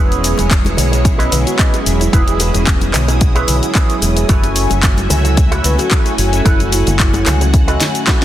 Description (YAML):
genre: nu-disco, nu disco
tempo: 111 BPM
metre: 4/4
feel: swing 54% on 16ths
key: unclear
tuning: A4 = 439 Hz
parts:
  - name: mellow synth brass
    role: accompaniment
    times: 0.0-8.2 s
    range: F#3 to G#5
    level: -20 LUFS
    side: right 1 dB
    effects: chorus, sidechain pumping, tape echo
  - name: string machine, full ensemble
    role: sustained chords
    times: 0.0-8.2 s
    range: G#3 to D#6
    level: -23 LUFS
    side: equal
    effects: ensemble chorus, sidechain pumping
  - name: electric guitar with an envelope filter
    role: riff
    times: 0.0-8.2 s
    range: E4 to F#5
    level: -23 LUFS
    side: right 3 dB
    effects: analog chorus, tape echo
  - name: fingered electric bass with an envelope filter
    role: bass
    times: 0.0-7.8 s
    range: E1 to C#2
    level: -16 LUFS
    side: equal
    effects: tube saturation, sidechain pumping
  - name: house drum kit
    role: drums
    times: 0.1-8.2 s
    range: handclaps, hi-hat, shaker, snare drum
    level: -19 LUFS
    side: left 1 dB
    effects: overdrive, studio reverb
  - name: bongos and congas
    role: percussion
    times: 0.4-8.2 s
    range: none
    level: -25 LUFS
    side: left 2 dB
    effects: none
  - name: electronic kick drum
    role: drums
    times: 0.5-8.2 s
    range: none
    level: -13 LUFS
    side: equal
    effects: overdrive, studio reverb
  - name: soft octave-layered synth lead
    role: melody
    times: 1.3-7.3 s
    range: E4 to B4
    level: -25 LUFS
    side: left 2 dB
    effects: chorus, tremolo, analog delay
room: light reverb, digital ambience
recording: dense, heavily limited modern master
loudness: -11 LUFS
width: side -12 dB against mid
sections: 0.0-8.2 A section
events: drum fill 7.8-8.2; clean electric guitar fill 7.8-8.2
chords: 0.0 E6; 4.3 F#m7